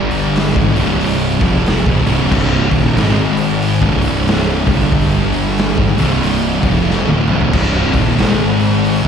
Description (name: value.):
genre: stoner and doom metal.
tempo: 92 BPM.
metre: 4/4.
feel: swing 62% on 8ths.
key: C minor.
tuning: A4 = 440 Hz.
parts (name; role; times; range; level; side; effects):
thick fuzz guitar; riff; 0.0-9.1 s; C2 to Ab3; -17 LUFS; left 10 dB; distortion.
thick fuzz guitar; riff; 0.0-9.1 s; C2 to Ab3; -17 LUFS; right 10 dB; distortion.
fuzz fingered electric bass; bass; 0.0-9.1 s; C1 to Ab1; -18 LUFS; equal; overdrive.
raw garage drum kit; drums; 0.1-9.1 s; crash cymbal, hi-hat, kick drum, snare drum, splash cymbal, toms; -18 LUFS; equal; none.
room: light reverb.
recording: live gig heard through the venue's PA, recital hall reverb.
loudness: -12 LUFS.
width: side -7 dB against mid.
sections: 0.0-9.1 A section.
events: drum fill 6.9-7.5.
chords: 0.0 G5; 0.5 Cm; 3.0 Ab5; 3.8 C5; 4.6 G5; 5.7 Cm; 8.2 Ab5.